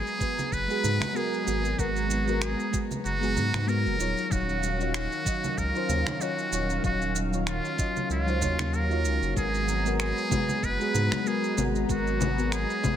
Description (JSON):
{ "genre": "sunset chillout", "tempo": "95 BPM", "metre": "4/4", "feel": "swing 56% on 16ths", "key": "G# minor", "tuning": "A4 = 440 Hz", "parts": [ { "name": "trumpet with metal mute", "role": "melody", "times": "0.0-13.0 s", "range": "E#4 to B4", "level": "-30 LUFS", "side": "equal", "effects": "ping-pong delay" }, { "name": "mellow FM electric piano", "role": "accompaniment", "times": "0.0-13.0 s", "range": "F#3 to E#5", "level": "-31 LUFS", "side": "equal", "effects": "chorus, phaser, auto-pan, cassette tape, digital delay" }, { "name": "lush unison pad", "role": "sustained chords", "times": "0.0-13.0 s", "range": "D#3 to A#5", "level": "-33 LUFS", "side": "equal", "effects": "chorus" }, { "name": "electronic shaker, finger snaps and congas", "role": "drums", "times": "0.1-13.0 s", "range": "none", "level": "-33 LUFS", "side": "left 1 dB", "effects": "none" }, { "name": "electronic kick drum", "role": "drums", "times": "0.2-13.0 s", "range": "none", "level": "-31 LUFS", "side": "equal", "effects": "none" }, { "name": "congas", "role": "percussion", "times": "0.4-12.3 s", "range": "none", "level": "-38 LUFS", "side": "right 4 dB", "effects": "none" }, { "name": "round analog bass", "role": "bass", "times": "0.5-12.7 s", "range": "D#1 to G#2", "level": "-30 LUFS", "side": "equal", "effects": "none" } ], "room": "light reverb, digital ambience", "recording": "none", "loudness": "-24 LUFS", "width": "side -10 dB against mid", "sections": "0.0-13.0 A section", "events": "none", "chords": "0.0 G#m9; 4.0 D#m9; 9.4 G#m9", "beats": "0.52 1.16 | 1.79 2.42 3.05 3.68 | 4.31 4.94 5.58 6.21 | 6.84 7.47 8.10 8.73 | 9.37 10.00 10.63 11.26 | 11.89 12.52" }